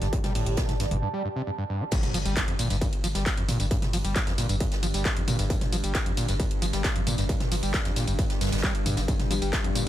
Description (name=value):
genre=driving peak-time techno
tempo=134 BPM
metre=4/4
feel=straight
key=G minor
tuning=A4 = 441 Hz
part: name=screaming distorted acid line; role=riff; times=0.0-9.8 s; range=F2 to G3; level=-31 LUFS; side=equal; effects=distortion, wide subtle chorus, sidechain pumping, dub echo
part: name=saturated sub bass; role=bass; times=0.0-9.9 s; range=G1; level=-30 LUFS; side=equal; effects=tube saturation, sidechain pumping, low-pass filter
part: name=soft brush drum kit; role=drums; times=0.0-9.9 s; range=hi-hat, snare drum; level=-40 LUFS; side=right 2 dB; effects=sidechain pumping on hats, high-pass filter on hats, high-pass filter on snare, high-pass filter on room
part: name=techno drum kit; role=drums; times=0.0-9.8 s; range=crash cymbal, handclaps, hi-hat, ride cymbal, tambourine, toms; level=-31 LUFS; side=equal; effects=none
part: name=ethereal airy pad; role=texture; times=0.0-1.0 s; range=G4 to A5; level=-35 LUFS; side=right 4 dB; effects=ensemble chorus, built-in reverb, phaser, sidechain pumping
part: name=electronic kick drum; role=drums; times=0.1-9.6 s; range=none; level=-28 LUFS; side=equal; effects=distortion
part: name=overtone-sweeping drone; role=drone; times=3.0-9.9 s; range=G2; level=-35 LUFS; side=left 1 dB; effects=chorus, built-in reverb, sidechain pumping
part: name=impact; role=sound effects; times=1.9-3.7 s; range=none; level=-36 LUFS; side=equal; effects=none
part: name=wavetable chord stab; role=stabs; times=9.3-9.6 s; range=G3 to G4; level=-33 LUFS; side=left 4 dB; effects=sidechain pumping, dub echo
room=little or no reverb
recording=none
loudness=-24 LUFS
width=side -12 dB against mid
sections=0.0-1.9 A section; 1.9-9.9 B section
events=break 1.0-1.9; drop 1.9-9.9; impact 1.9-3.7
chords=0.0 G5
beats=| 0.13 0.58 1.02 1.47 | 1.92 2.37 2.81 3.26 | 3.71 4.16 4.61 5.05 | 5.50 5.95 6.40 6.84 | 7.29 7.74 8.19 8.63 | 9.08 9.53